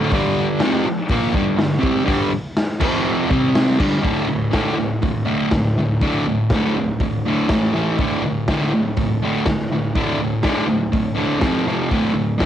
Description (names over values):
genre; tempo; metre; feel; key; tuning
garage rock duo or trio; 122 BPM; 4/4; straight; D minor; A4 = 438 Hz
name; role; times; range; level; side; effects
fuzz guitar; riff; 0.0-12.5 s; D2 to C4; -18 LUFS; equal; distortion
raw garage drum kit; drums; 0.1-12.5 s; crash cymbal, hi-hat, kick drum, snare drum; -22 LUFS; equal; cassette tape
room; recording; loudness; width
light reverb; home recording on cassette; -17 LUFS; side -10 dB against mid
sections
0.0-4.0 A section; 4.0-12.5 B section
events
none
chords
0.1 G5; 2.8 F5; 3.3 C5; 3.8 G5; 4.0 D5; 7.5 A5; 8.0 D5; 11.4 F5; 11.9 D5